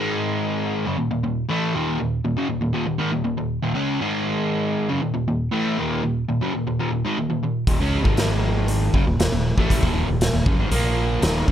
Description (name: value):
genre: classic rock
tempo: 119 BPM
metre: 4/4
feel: straight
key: unclear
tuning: A4 = 441 Hz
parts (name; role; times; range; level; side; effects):
- crunchy overdriven guitar; riff; 0.0-11.5 s; Eb2 to Db4; -22 LUFS; equal; none
- fretless electric bass; bass; 7.7-11.5 s; Eb1 to Db2; -23 LUFS; equal; none
- raw garage drum kit; drums; 7.7-11.5 s; hi-hat, kick drum, snare drum; -22 LUFS; equal; none
room: light reverb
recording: none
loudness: -20 LUFS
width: side -10 dB against mid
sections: 0.0-11.5 A section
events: none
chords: 0.0 Ab5; 0.9 Eb5; 4.0 Ab5; 4.9 Eb5; 8.1 Ab5; 8.9 Eb5; 10.7 Bb5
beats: 0.10 0.60 1.11 | 1.61 2.12 2.62 3.13 | 3.63 4.14 4.64 5.15 | 5.66 6.16 6.67 7.17 | 7.68 8.19 8.69 9.20 | 9.71 10.21 10.72 11.22